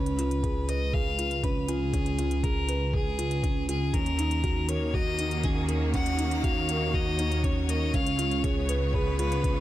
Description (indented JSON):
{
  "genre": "piano and strings electronica",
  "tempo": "120 BPM",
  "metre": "4/4",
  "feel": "straight",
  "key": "unclear",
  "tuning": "A4 = 440 Hz",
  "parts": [
    { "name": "clear violin", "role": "melody", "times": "0.0-9.6 s", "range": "Ab4 to Gb5", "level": "-32 LUFS", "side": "left 2 dB", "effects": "none" },
    { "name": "felt-muted upright piano", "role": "riff", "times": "0.0-9.6 s", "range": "Db4 to Cb5", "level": "-31 LUFS", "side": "right 2 dB", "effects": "digital delay" },
    { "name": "dark detuned saw bass", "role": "bass", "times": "0.0-9.6 s", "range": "Db2 to Eb2", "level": "-29 LUFS", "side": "equal", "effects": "sidechain pumping" },
    { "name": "electronic hi-hat", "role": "drums", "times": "0.1-9.5 s", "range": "none", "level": "-38 LUFS", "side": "left 1 dB", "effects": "none" },
    { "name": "electronic kick drum", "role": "drums", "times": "0.4-9.5 s", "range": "none", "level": "-29 LUFS", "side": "equal", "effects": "none" },
    { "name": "bright studio string section", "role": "sustained chords", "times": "3.9-9.6 s", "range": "Db3 to Db5", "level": "-36 LUFS", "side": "equal", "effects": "sidechain pumping" }
  ],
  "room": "small room ambience",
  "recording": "none",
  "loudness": "-25 LUFS",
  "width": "side -14 dB against mid",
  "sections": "0.0-9.6 A section",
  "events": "none",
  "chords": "0.0 Db7; 3.9 Ebm7; 7.9 Db7",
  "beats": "0.44 0.94 1.44 | 1.94 2.44 2.94 3.44 | 3.94 4.44 4.94 5.44 | 5.94 6.44 6.94 7.44 | 7.94 8.44 8.94 9.44"
}